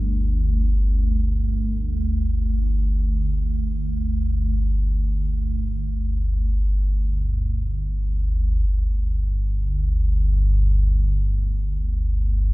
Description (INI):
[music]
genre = ambient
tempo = free time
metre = none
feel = none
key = unclear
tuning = A4 = 440 Hz
[part]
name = deep rumbling drone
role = solo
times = 0.0-12.5 s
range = G1 to D2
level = -20 LUFS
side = equal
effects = built-in reverb, phaser
[sound]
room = little or no reverb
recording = none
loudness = -20 LUFS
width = side -19 dB against mid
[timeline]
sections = 0.0-8.7 A section; 8.7-12.5 B section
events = none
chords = 0.0 G5